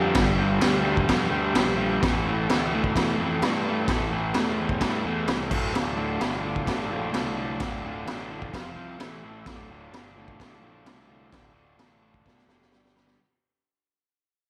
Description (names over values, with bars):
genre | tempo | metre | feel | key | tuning
garage rock duo or trio | 129 BPM | 4/4 | straight | D minor | A4 = 437 Hz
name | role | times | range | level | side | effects
crunchy overdriven guitar | riff | 0.0-13.2 s | D2 to A3 | -30 LUFS | equal | spring reverb
fuzz picked electric bass | bass | 0.0-13.2 s | D1 to G2 | -34 LUFS | equal | overdrive
raw garage drum kit | drums | 0.1-13.2 s | crash cymbal, kick drum, snare drum | -30 LUFS | equal | none
combo organ | sustained chords | 5.7-13.2 s | D4 to F5 | -43 LUFS | equal | none
room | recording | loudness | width
light reverb | none | -25 LUFS | mono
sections
0.0-13.2 A section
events
fade-out 0.0-13.2; drum fill 12.3-13.2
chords
0.0 Gm; 2.0 A5; 5.5 D5; 5.7 Dm; 8.5 F5; 9.0 A5; 9.5 Dm; 12.7 G5